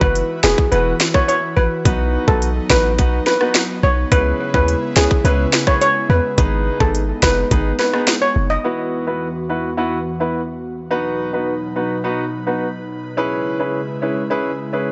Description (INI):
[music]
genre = dancehall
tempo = 106 BPM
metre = 4/4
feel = straight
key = E major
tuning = A4 = 439 Hz
[part]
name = steel pan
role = melody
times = 0.0-8.6 s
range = G#4 to D#5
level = -21 LUFS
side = equal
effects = analog delay
[part]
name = warm grand piano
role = accompaniment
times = 0.0-14.9 s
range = B3 to B4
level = -24 LUFS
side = equal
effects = sidechain pumping
[part]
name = airy breathy pad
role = sustained chords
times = 0.0-14.9 s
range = E2 to B4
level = -29 LUFS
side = equal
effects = chorus, sidechain pumping
[part]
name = warm 808-style bass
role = bass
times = 0.0-8.6 s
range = E1 to E2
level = -20 LUFS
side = equal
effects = none
[part]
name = island pop drum kit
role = drums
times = 0.0-8.2 s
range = finger snaps, hi-hat, kick drum, rim click, snare drum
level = -20 LUFS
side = equal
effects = overdrive
[sound]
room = little or no reverb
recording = dry, gritty hardware recording, nothing above 7.9 kHz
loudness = -18 LUFS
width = mono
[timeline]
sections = 0.0-8.6 A section; 8.6-14.9 B section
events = none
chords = 0.0 Esus2; 1.9 B; 4.1 C#m7; 6.4 G#m; 8.6 Esus2; 10.9 B; 13.2 C#m7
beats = 0.15 0.72 1.29 | 1.85 2.42 2.98 3.55 | 4.12 4.68 5.25 5.82 | 6.38 6.95 7.51 8.08 | 8.64 9.21 9.78 10.34 | 10.91 11.47 12.04 12.61 | 13.17 13.74 14.30 14.87